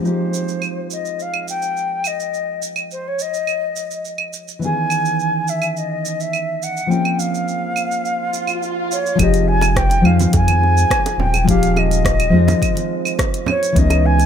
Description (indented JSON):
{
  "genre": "sunset chillout",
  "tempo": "105 BPM",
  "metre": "4/4",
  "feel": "straight",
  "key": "F minor",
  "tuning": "A4 = 441 Hz",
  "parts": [
    { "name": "nylon-string guitar", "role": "accompaniment", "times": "0.0-14.3 s", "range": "Eb3 to Ab4", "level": "-20 LUFS", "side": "moving between left 4 dB and right 7 dB", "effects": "auto-pan" },
    { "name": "mellow jazz flute", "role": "melody", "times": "0.1-14.3 s", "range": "C5 to Ab5", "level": "-21 LUFS", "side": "left 1 dB", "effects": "tape echo" },
    { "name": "deep house drum kit", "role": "drums", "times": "0.1-14.3 s", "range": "claves, hi-hat, rim click, shaker", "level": "-24 LUFS", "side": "right 3 dB", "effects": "none" },
    { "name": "swell", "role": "sound effects", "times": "8.2-9.2 s", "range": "none", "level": "-26 LUFS", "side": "right 1 dB", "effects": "none" },
    { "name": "round analog bass", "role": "bass", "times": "9.2-14.3 s", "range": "Eb1 to F2", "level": "-16 LUFS", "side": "equal", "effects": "tube saturation" },
    { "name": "electronic kick drum", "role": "drums", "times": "9.2-13.9 s", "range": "none", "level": "-20 LUFS", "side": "equal", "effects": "none" },
    { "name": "bongos and congas", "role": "percussion", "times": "9.2-14.3 s", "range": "none", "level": "-26 LUFS", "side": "right 5 dB", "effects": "none" }
  ],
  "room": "light reverb",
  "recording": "none",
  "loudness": "-16 LUFS",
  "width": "side -8 dB against mid",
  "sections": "0.0-9.2 A section; 9.2-14.3 B section",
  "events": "swell 8.2-9.2",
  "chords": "0.0 Fm9; 4.6 Dbm9; 6.9 Bbm9; 9.2 Fm9"
}